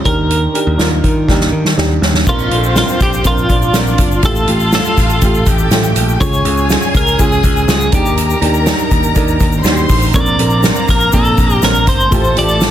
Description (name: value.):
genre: piano-driven pop.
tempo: 122 BPM.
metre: 4/4.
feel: straight.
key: Bb major.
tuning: A4 = 440 Hz.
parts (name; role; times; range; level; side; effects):
dark upright piano; accompaniment; 0.0-12.7 s; A2 to Bb4; -18 LUFS; right 2 dB; none.
twelve-string electric guitar; melody; 0.1-12.7 s; F4 to D5; -17 LUFS; equal; tremolo, digital delay.
picked electric bass; bass; 0.1-12.7 s; G1 to Eb3; -16 LUFS; equal; none.
soft-mallet drum kit; drums; 0.1-12.7 s; crash cymbal, hi-hat, kick drum, snare drum; -14 LUFS; equal; none.
rich studio violin section; second line; 2.3-12.7 s; Bb3 to C6; -20 LUFS; left 1 dB; none.
egg shaker; percussion; 2.3-12.7 s; none; -28 LUFS; left 9 dB; none.
room: light reverb, studio reverb.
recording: dense, heavily limited modern master.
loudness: -10 LUFS.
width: side -11 dB against mid.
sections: 0.0-2.3 A section; 2.3-12.7 B section.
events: drum fill 1.3-2.3.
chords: 0.1 Ebmaj7; 2.3 Bbadd9; 4.2 Fadd9/A; 6.2 Db; 7.9 Ebmaj7; 10.1 Bbadd9; 12.1 Fadd9/A.